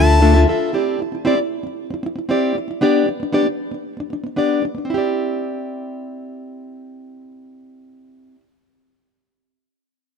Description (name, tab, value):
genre	pop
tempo	115 BPM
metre	4/4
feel	straight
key	C major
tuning	A4 = 440 Hz
part	fingerpicked plugged-in steel-string acoustic guitar	accompaniment	0.0-8.5 s	D3 to E5	-19 LUFS	left 1 dB	none
room	light reverb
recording	none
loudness	-17 LUFS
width	side -6 dB against mid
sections	0.7-4.9 A section; 4.9-9.1 B section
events	none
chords	0.0 Dmadd9; 0.7 Cadd9; 2.8 G/B; 4.9 Cadd9